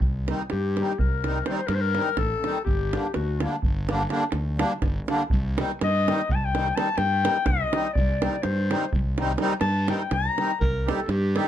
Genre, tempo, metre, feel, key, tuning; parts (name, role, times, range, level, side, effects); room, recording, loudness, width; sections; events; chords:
balkan folk, Balkan wedding band; 249 BPM (eighths); 11/8; straight; C dorian sharp4; A4 = 440 Hz
fuzz fingered electric bass; bass; 0.0-11.4 s; G1 to G2; -27 LUFS; equal; overdrive
davul; percussion; 0.0-11.5 s; -27 LUFS; right 1 dB
accordion; accompaniment; 0.3-11.5 s; D3 to G4; -28 LUFS; equal; light tremolo tuning
warm clarinet; second line; 0.5-10.6 s; F#4 to Bb5; -26 LUFS; left 5 dB
warm clarinet; melody; 10.6-11.5 s; G4 to Bb4; -29 LUFS; right 1 dB
moderate small room ambience, RT60 0.5 s; -22 LUFS; side -11 dB against mid
0.0-10.6 A section
clarinet solo 0.0-10.6
0.0 Cm; 2.7 Gm; 5.3 Cm